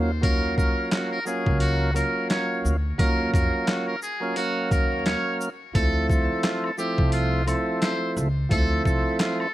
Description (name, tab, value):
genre	hip hop, boom-bap hip-hop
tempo	87 BPM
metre	4/4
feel	swing 58% on 16ths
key	unclear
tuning	A4 = 440 Hz
part	tonewheel organ	accompaniment	0.0-9.5 s	F3 to F5	-26 LUFS	right 1 dB	slow rotary speaker, cassette tape, high-pass filter, low-pass filter
part	upright bass	bass	0.0-9.0 s	C2 to F2	-26 LUFS	equal	none
part	trumpet with metal mute	melody	0.2-9.5 s	F4 to Db5	-29 LUFS	equal	high-pass filter, low-pass filter, ping-pong delay
part	boom bap sampler-style drum kit	drums	0.2-9.4 s	handclaps, hi-hat, kick drum, shaker, snare drum	-24 LUFS	equal	none
part	tube shaker and woodblock	percussion	5.8-9.5 s	none	-38 LUFS	left 7 dB	none
room	studio reverb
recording	vinyl crackle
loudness	-21 LUFS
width	side -15 dB against mid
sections	0.0-9.5 A section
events	none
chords	0.0 Ebm9; 5.7 Dm9